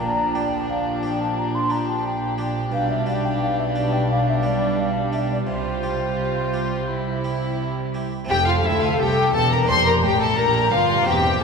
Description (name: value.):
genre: classical, baroque-style concerto movement with solo episodes.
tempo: 87 BPM.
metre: 4/4.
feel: straight.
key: unclear.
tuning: A4 = 440 Hz.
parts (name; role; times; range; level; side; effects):
mellow baroque flute; melody; 0.0-11.4 s; C5 to C6; -25 LUFS; left 1 dB; none.
warm chamber violin section; melody; 0.0-11.4 s; G4 to C6; -27 LUFS; left 4 dB; none.
rich chamber violin section; second line; 0.0-11.4 s; D4 to C5; -26 LUFS; left 1 dB; none.
dark chamber viola section; accompaniment; 0.0-11.4 s; F3 to A4; -29 LUFS; right 2 dB; none.
harpsichord; accompaniment; 0.0-11.4 s; C2 to G4; -32 LUFS; right 1 dB; none.
rich chamber double bass section; bass; 0.0-11.4 s; E1 to D2; -28 LUFS; right 1 dB; none.
warm chamber cello section; bass; 0.0-11.4 s; C2 to C3; -27 LUFS; right 2 dB; none.
room: wet church reverb, RT60 2.8 s.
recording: recorded in a church or concert hall.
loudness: -19 LUFS.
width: side -5 dB against mid.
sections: 0.0-8.3 A section; 8.3-11.4 B section.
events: none.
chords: 0.0 Gm7/Bb; 2.7 G/B; 5.5 Csus4; 6.9 C; 8.3 F; 9.7 Gm7/F.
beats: | 0.00 0.68 1.36 2.04 | 2.72 3.41 4.09 4.78 | 5.49 6.19 6.90 7.60 | 8.30 8.99 9.68 10.38 | 11.06.